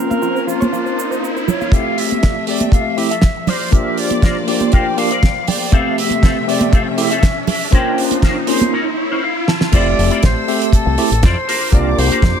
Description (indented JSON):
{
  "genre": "nu-disco, nu disco",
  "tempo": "120 BPM",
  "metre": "4/4",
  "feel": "straight",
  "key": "F major",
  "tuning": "A4 = 439 Hz",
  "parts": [
    { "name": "jazz flute", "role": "melody", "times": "0.0-12.4 s", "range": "F4 to G5", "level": "-22 LUFS", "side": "left 1 dB", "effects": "digital delay" },
    { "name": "tine electric piano", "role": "accompaniment", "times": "0.0-12.4 s", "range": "A3 to E5", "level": "-20 LUFS", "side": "equal", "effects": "medium stereo tremolo, sidechain pumping" },
    { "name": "rich symphonic string section", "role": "sustained chords", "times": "0.0-12.4 s", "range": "C3 to E6", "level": "-27 LUFS", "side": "left 2 dB", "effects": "sidechain pumping" },
    { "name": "analog pluck", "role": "arpeggios", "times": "0.0-1.7 s", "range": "F4 to Bb5", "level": "-26 LUFS", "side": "right 5 dB", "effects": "chorus, sidechain pumping, digital delay" },
    { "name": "riser", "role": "sound effects", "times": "0.0-9.7 s", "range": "none", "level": "-25 LUFS", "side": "equal", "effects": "none" },
    { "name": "congas and egg shaker", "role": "percussion", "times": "0.1-8.7 s", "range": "none", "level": "-21 LUFS", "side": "right 4 dB", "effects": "none" },
    { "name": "electric guitar with an envelope filter", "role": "riff", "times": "1.7-12.4 s", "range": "C4 to A5", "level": "-24 LUFS", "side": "left 4 dB", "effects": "analog chorus, low-pass filter" },
    { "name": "damped 70s drum kit", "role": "drums", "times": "1.7-12.3 s", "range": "crash cymbal, hi-hat, snare drum", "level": "-21 LUFS", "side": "right 3 dB", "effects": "low-pass filter on hats, studio ambience, low-pass filter on cymbals, low-pass filter on snare, low-pass filter on room" },
    { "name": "kick drum", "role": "drums", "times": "1.7-12.3 s", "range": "none", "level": "-12 LUFS", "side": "equal", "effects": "studio ambience" },
    { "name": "fingered electric bass with an envelope filter", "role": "bass", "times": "9.7-12.3 s", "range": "F1 to F2", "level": "-17 LUFS", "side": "equal", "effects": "none" }
  ],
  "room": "light reverb, small room ambience",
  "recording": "none",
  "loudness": "-13 LUFS",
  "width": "side -8 dB against mid",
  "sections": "0.0-1.7 A section; 1.7-9.7 B section; 9.7-12.4 C section",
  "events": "riser 0.0-1.7, 1.7-9.7; filter sweep on tine electric piano 0.0-1.7; build-up 1.7-9.7; filter sweep on clean electric guitar 1.7-9.7; clean electric guitar fill 5.0-5.7, 8.7-9.7; break 8.7-9.7; drum fill 9.5; drop 9.7-12.4",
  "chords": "0.0 Bbmadd9; 1.7 Fmaj7; 3.5 C9sus4; 5.7 Fmaj7/C; 7.7 Bbmadd9; 9.7 Fmaj7; 11.5 C9sus4"
}